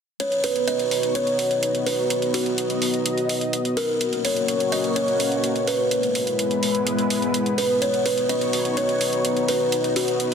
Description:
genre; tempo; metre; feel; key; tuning
EDM, festival progressive house; 126 BPM; 4/4; straight; B major; A4 = 441 Hz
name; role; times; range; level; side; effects
buzzing kalimba; melody; 0.2-10.3 s; F#4 to D#5; -22 LUFS; right 1 dB; dub echo
lush unison pad; sustained chords; 0.5-10.3 s; G#3 to D#5; -25 LUFS; left 2 dB; chorus, phaser
electronic hi-hat; drums; 0.2-10.3 s; none; -28 LUFS; right 2 dB; overdrive
room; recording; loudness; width
wet lush hall reverb, RT60 2.0 s, studio ambience; dense, heavily limited modern master; -20 LUFS; side -7 dB against mid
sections
0.2-10.3 A section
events
filter sweep on analog synth pad 0.2-10.3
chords
0.2 Badd9; 4.0 F#; 5.9 E; 7.8 Badd9

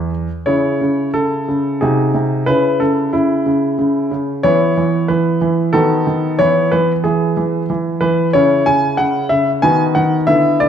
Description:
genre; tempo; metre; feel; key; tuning
classical-period piano sonatina; 92 BPM; 3/4; rubato; C# minor; A4 = 444 Hz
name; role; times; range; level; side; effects
clear baby grand piano; solo; 0.0-10.7 s; E2 to G#5; -13 LUFS; equal; none
room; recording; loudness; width
moderate recital hall reverb, RT60 1.2 s; dark, warm production; -13 LUFS; side -8 dB against mid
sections
0.5-10.7 A section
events
none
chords
0.5 C#m; 1.8 G#7/B#; 2.5 C#m; 4.4 E5; 5.7 B7/D#; 6.4 E; 8.3 C#m; 9.6 B/D#

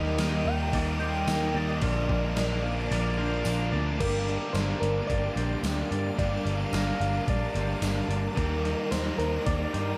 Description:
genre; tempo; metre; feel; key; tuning
rock, shoegaze and dream pop; 110 BPM; 4/4; straight; G minor; A4 = 441 Hz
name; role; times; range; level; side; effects
soft struck synth lead; melody; 0.0-10.0 s; Bb4 to G5; -36 LUFS; equal; chorus, diffuse ambient delay
icy glass pad; sustained chords; 0.0-10.0 s; Eb4 to Eb6; -41 LUFS; equal; chorus, built-in reverb
twangy electric guitar; arpeggios; 0.0-10.0 s; F4 to D5; -43 LUFS; equal; analog chorus, diffuse ambient delay
biting overdriven guitar; riff; 0.0-10.0 s; G2 to Bb4; -37 LUFS; equal; reverse reverb
overdriven semi-hollow guitar; riff; 0.0-10.0 s; G2 to Eb4; -40 LUFS; equal; none
raw garage guitar; riff; 0.0-10.0 s; G2 to Eb4; -37 LUFS; equal; overdrive, subtle chorus
vintage muted picked electric bass; bass; 0.0-9.9 s; G1 to G2; -32 LUFS; equal; none
gated 80s digital drum machine; drums; 0.0-9.9 s; crash cymbal, hi-hat, kick drum, snare drum; -36 LUFS; equal; gated reverb, gated reverb snare
tambourine; percussion; 0.2-9.0 s; none; -47 LUFS; equal; none
room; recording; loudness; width
wet plate reverb, RT60 2.2 s; dreamy mix soaked in reverb; -28 LUFS; mono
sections
0.0-4.0 A section; 4.0-10.0 B section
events
kick and snare drop out 2.9-4.0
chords
0.0 Eb; 1.8 Bb; 4.0 Gm7; 8.4 Eb

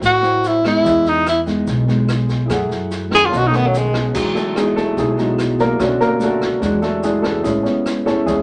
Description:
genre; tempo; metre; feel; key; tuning
bossa nova; 145 BPM; 4/4; straight; E major; A4 = 440 Hz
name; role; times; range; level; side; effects
nylon-string guitar; accompaniment; 0.0-8.4 s; A2 to B4; -25 LUFS; equal; none
warm grand piano; accompaniment; 0.0-8.4 s; D3 to A5; -21 LUFS; equal; none
upright bass; bass; 0.0-8.4 s; A1 to F#2; -25 LUFS; equal; none
open jazz drum kit; drums; 0.0-8.4 s; crash cymbal, kick drum, rim click, snare drum; -30 LUFS; equal; none
tube shaker; percussion; 0.0-8.4 s; none; -45 LUFS; equal; none
breathy tenor saxophone; melody; 0.1-4.1 s; F#3 to G#4; -17 LUFS; equal; none
room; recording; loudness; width
wet studio ambience, RT60 0.5 s; none; -17 LUFS; mono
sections
0.0-4.1 A section; 4.1-8.4 A section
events
tenor saxophone solo 0.0-4.1; grand piano solo 4.1-8.4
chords
0.0 D9; 0.8 Emaj7; 2.5 F#m9; 3.3 B9; 4.1 Emaj7; 5.8 Bm7; 6.6 E9; 7.5 Amaj9

